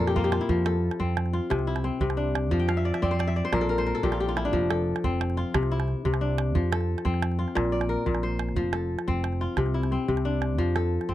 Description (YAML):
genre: west african traditional, West African string and xylophone music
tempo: 119 BPM (dotted quarters)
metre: 12/8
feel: straight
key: F major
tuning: A4 = 440 Hz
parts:
  - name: kora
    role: arpeggios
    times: 0.0-11.1 s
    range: Bb2 to G5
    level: -26 LUFS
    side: left 2 dB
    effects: none
  - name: fingered electric bass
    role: bass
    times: 0.0-11.1 s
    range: F1 to F2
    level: -28 LUFS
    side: right 1 dB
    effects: none
  - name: calabash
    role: percussion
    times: 0.1-11.1 s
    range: none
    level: -31 LUFS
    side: right 5 dB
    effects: none
room: little or no reverb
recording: dry, close 1970s-style studio recording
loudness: -24 LUFS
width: side -13 dB against mid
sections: 0.5-11.1 A section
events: kora fill 0.0-0.5, 2.6-4.5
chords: 0.0 Bb5; 0.5 F; 1.5 C; 2.5 F5; 3.5 Bbmaj13; 4.5 F; 5.5 C; 6.6 F; 7.6 Bb; 8.6 F; 9.6 C; 10.6 F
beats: 0.00 | 0.50 1.01 1.51 2.02 | 2.52 3.03 3.53 4.04 | 4.54 5.04 5.55 6.05 | 6.56 7.06 7.57 8.07 | 8.57 9.08 9.58 10.09 | 10.59 11.09